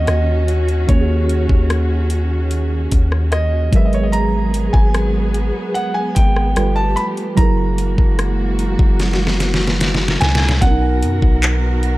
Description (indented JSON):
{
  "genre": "contemporary R&B",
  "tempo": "74 BPM",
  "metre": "4/4",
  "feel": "straight",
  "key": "B major",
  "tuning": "A4 = 440 Hz",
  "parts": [
    { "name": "clear grand piano", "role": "melody", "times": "0.0-12.0 s", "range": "C#5 to B5", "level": "-24 LUFS", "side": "right 1 dB", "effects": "tape echo" },
    { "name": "muted felt-like synth keys", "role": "accompaniment", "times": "0.0-12.0 s", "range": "B2 to B4", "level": "-23 LUFS", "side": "right 4 dB", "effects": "chorus" },
    { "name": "warm symphonic string section", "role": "sustained chords", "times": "0.0-12.0 s", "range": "D#3 to A#4", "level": "-25 LUFS", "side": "left 1 dB", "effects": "none" },
    { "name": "long sustained 808-style bass", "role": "bass", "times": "0.0-12.0 s", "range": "F#1 to F#2", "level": "-18 LUFS", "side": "equal", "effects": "none" },
    { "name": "smooth R&B drum kit", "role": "drums", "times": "0.1-12.0 s", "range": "handclaps, hi-hat, kick drum, rim click, snare drum", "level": "-16 LUFS", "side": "equal", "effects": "none" }
  ],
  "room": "digital ambience",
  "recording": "dark, warm production",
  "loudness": "-14 LUFS",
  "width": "side -18 dB against mid",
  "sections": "0.0-10.6 A section; 10.6-12.0 B section",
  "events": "drum fill 9.0-10.6",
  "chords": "0.0 D#m7; 3.7 G#m9; 6.6 G9; 7.4 F#9; 10.6 Bmaj7"
}